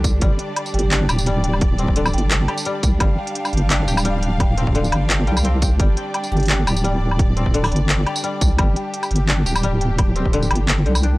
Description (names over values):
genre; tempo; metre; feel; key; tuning
half-time drum and bass; 172 BPM; 4/4; swing 54% on 16ths, half-time; unclear; A4 = 441 Hz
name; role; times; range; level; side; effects
rich symphonic string section; sustained chords; 0.0-11.2 s; G3 to F5; -28 LUFS; equal; sidechain pumping
koto; arpeggios; 0.0-11.2 s; D3 to G4; -27 LUFS; left 3 dB; tape echo
deep soft wobble bass; bass; 0.0-11.2 s; D1 to C2; -18 LUFS; equal; chorus
electronic kick drum; drums; 0.0-10.3 s; none; -18 LUFS; equal; none
organic electronic drum kit; drums; 0.0-11.1 s; handclaps, hi-hat, tambourine, woodblock; -22 LUFS; equal; none
pulsing gated texture; texture; 0.0-11.2 s; D5 to G5; -32 LUFS; equal; chorus, built-in reverb
vibraphone with medium mallets; melody; 0.7-0.9, 6.3-6.5 s; G4; -32 LUFS; right 4 dB; tape echo
room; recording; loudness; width
studio reverb; dry, gritty hardware recording, transformer saturation; -16 LUFS; side -20 dB against mid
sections
0.0-11.2 A section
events
none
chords
0.0 G5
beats
| 0.22 0.57 0.92 1.26 | 1.61 1.96 2.31 2.66 | 3.01 3.36 3.71 4.05 | 4.40 4.75 5.10 5.45 | 5.80 6.15 6.50 6.84 | 7.19 7.54 7.89 8.24 | 8.59 8.94 9.29 9.64 | 9.98 10.33 10.68 11.03